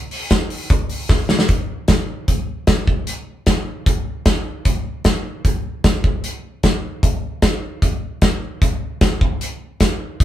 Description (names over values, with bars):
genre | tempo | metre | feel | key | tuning
indie pop | 152 BPM | 4/4 | straight | none | none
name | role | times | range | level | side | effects
loose indie drum kit | drums | 0.1-10.2 s | hi-hat, kick drum, snare drum | -16 LUFS | equal | none
room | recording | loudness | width
moderate studio reverb, RT60 0.5 s | band playing live in one room | -17 LUFS | side -12 dB against mid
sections
0.0-1.5 A section; 1.5-10.2 B section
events
drum fill 1.1-1.5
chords
none